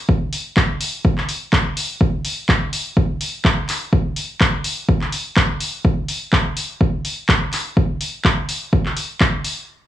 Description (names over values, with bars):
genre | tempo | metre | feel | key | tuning
house | 125 BPM | 4/4 | swing 54% on 16ths | none | none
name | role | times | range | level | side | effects
electronic kick drum | drums | 0.1-9.3 s | none | -17 LUFS | equal | none
punchy analog drum machine | drums | 0.3-9.5 s | handclaps, hi-hat | -21 LUFS | equal | sidechain pumping on hats
room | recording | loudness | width
little or no reverb | dry, gritty hardware recording, cassette tape, small room ambience | -17 LUFS | side -12 dB against mid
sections
0.0-9.9 A section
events
break 9.7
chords
none